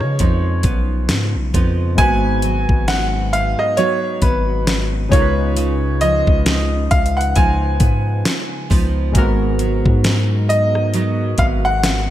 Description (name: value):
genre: contemporary R&B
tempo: 67 BPM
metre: 4/4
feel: swing 58% on 16ths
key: G# dorian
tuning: A4 = 440 Hz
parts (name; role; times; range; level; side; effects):
- bright grand piano; melody; 0.0-12.1 s; B4 to G#5; -20 LUFS; equal; ping-pong delay
- warm analog keys; accompaniment; 0.0-12.1 s; G#2 to B4; -24 LUFS; left 1 dB; chorus
- nylon-string guitar; arpeggios; 0.0-12.1 s; G#2 to D#4; -24 LUFS; right 5 dB; lush chorus, ping-pong delay
- long sustained 808-style bass; bass; 0.0-12.1 s; G#1 to C#3; -19 LUFS; equal; none
- smooth R&B drum kit; drums; 0.0-12.1 s; hi-hat, kick drum, rim click, snare drum; -18 LUFS; equal; gated reverb
room: light reverb, digital ambience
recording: bright 1980s-style digital production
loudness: -14 LUFS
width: side -13 dB against mid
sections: 0.0-12.1 A section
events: none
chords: 0.0 C#9; 2.0 G#m7; 5.1 C#9; 9.1 G#m7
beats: 0.19 1.09 | 1.99 2.88 3.78 4.67 | 5.57 6.46 7.36 8.25 | 9.15 10.04 10.94 11.84